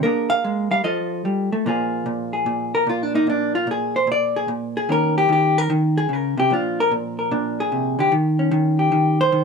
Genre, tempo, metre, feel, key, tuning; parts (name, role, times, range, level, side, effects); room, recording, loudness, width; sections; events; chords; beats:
solo jazz; 148 BPM; 4/4; swing 67% on 8ths; A4 = 440 Hz
vintage hollow-body jazz guitar; solo; 0.0-9.4 s; Bb2 to F5; -18 LUFS; equal
light reverb; minimal, uncompressed stereo recording; -18 LUFS; side -5 dB against mid
0.0-1.6 A section; 1.6-9.4 B section
hollow-body jazz guitar solo 1.6-9.4
0.0 Bb7; 0.8 F7; 1.6 Bb5; 4.9 Eb5; 6.5 Bb7; 8.1 Eb7
| 0.03 0.43 0.84 1.24 | 1.65 2.05 2.46 2.86 | 3.27 3.67 4.07 4.48 | 4.88 5.29 5.69 6.09 | 6.50 6.90 7.31 7.71 | 8.11 8.52 8.92 9.32